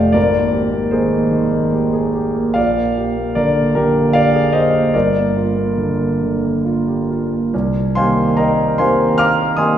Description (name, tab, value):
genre	classical, impressionist solo piano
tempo	67-77 BPM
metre	3/4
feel	rubato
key	C minor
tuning	A4 = 440 Hz
part	clear concert grand piano	solo	0.0-9.8 s	F1 to F6	-14 LUFS	equal	none
room	wet concert hall reverb, RT60 2.3 s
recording	heard from further back in the room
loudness	-14 LUFS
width	side -10 dB against mid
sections	0.0-7.5 A section; 7.5-9.8 B section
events	none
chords	0.2 Abmaj9; 2.6 Bb69; 4.9 Gm7; 7.5 Cm7